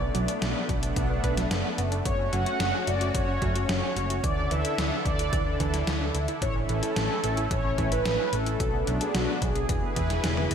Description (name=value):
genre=synthwave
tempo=110 BPM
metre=4/4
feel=straight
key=unclear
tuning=A4 = 437 Hz
part: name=mellow synth brass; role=melody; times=0.0-10.5 s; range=F#4 to F#5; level=-31 LUFS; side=right 1 dB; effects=chorus, ping-pong delay
part: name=lush unison pad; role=sustained chords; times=0.0-10.5 s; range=D3 to B4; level=-31 LUFS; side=equal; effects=chorus, sidechain pumping
part: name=analog pluck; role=arpeggios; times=0.0-10.5 s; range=E3 to B4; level=-34 LUFS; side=right 3 dB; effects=chorus, diffuse ambient delay
part: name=hollow-body short-scale picked electric bass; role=bass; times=0.0-10.5 s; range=E1 to D2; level=-30 LUFS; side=equal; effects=tube saturation, sidechain pumping
part: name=gated 80s digital drum machine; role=drums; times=0.1-10.5 s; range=hi-hat, snare drum, toms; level=-32 LUFS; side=left 2 dB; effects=gated reverb, gated reverb snare, overdrive
part: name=electronic kick drum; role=drums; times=0.7-10.1 s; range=none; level=-30 LUFS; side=equal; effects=none
room=moderate lush hall reverb, RT60 2.0 s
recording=dreamy mix soaked in reverb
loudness=-24 LUFS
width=side -7 dB against mid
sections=0.0-10.5 A section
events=drum fill 10.2-10.5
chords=0.0 Bm7; 2.1 F#m; 4.2 Dsus2; 6.4 A; 8.6 Bm7; 9.7 E